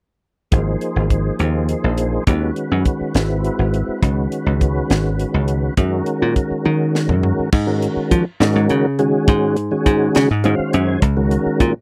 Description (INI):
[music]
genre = electric jazz fusion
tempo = 69 BPM (dotted quarters)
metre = 6/8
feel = straight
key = Ab mixolydian from 7.5 s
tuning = A4 = 439 Hz
[part]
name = tonewheel organ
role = accompaniment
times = 0.5-11.7 s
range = D#3 to Ab5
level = -22 LUFS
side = equal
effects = slow rotary speaker, chorus vibrato
[part]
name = dry thumbed slap bass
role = bass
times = 0.5-11.7 s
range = Ab1 to F3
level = -20 LUFS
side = equal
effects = none
[part]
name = tight funk drum kit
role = drums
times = 0.5-11.7 s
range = crash cymbal, hi-hat, kick drum, snare drum, toms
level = -21 LUFS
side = equal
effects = none
[sound]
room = little or no reverb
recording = dry, close 1970s-style studio recording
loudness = -18 LUFS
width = mono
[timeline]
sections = 0.5-7.5 A section; 7.5-11.8 B section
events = drum fill 6.7-7.5; tonewheel organ fill 10.1-11.0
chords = 0.5 Ab; 2.3 B69/D#; 3.2 Ab7alt; 4.0 Db9sus4; 5.8 Gb; 7.5 Ab9sus4; 11.0 Dbsus24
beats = | 0.52 1.40 | 2.28 3.15 | 4.03 4.91 | 5.78 6.66 | 7.53 8.40 | 9.28 10.15 | 11.02